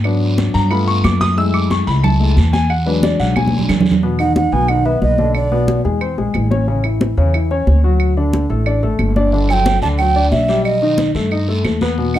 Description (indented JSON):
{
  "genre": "Afro-Cuban jazz",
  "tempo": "181 BPM",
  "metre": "4/4",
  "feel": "straight",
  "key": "unclear",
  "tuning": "A4 = 435 Hz",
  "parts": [
    { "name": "warm grand piano", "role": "accompaniment", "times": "0.0-12.2 s", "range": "B2 to E6", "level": "-18 LUFS", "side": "left 3 dB", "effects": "none" },
    { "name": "upright bass", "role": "bass", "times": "0.0-12.2 s", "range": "G1 to G#2", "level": "-16 LUFS", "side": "equal", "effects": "none" },
    { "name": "claves", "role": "percussion", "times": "0.0-12.2 s", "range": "none", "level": "-28 LUFS", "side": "right 6 dB", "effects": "none" },
    { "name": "congas", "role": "percussion", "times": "0.0-12.2 s", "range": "none", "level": "-20 LUFS", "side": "equal", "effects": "none" },
    { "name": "guiro", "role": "percussion", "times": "0.0-4.0, 9.3-12.2 s", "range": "none", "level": "-30 LUFS", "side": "right 2 dB", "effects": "none" },
    { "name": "breathy alto ocarina", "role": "melody", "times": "4.2-5.8, 9.5-12.2 s", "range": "D5 to A5", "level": "-17 LUFS", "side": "right 4 dB", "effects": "none" }
  ],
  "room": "light reverb",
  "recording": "dark, warm production",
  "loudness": "-13 LUFS",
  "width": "side -12 dB against mid",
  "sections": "0.0-4.0 A section; 4.0-12.2 B section",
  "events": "grand piano solo 0.0-4.0; drum fill 3.4-4.0",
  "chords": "0.0 G#m7b5; 0.7 G9; 1.4 F#m9; 2.7 E7; 4.0 E5; 5.3 Bm; 6.0 Eaug; 6.7 A; 8.0 D; 9.3 Gmaj9; 10.7 Baug7",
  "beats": "| 0.04 0.38 0.71 1.04 | 1.37 1.70 2.04 2.37 | 2.70 3.03 3.36 3.69 | 4.02 4.36 4.69 5.02 | 5.35 5.68 6.01 6.34 | 6.67 7.01 7.34 7.67 | 8.00 8.33 8.66 8.99 | 9.33 9.66 9.99 10.32 | 10.65 10.98 11.32 11.65 | 11.98"
}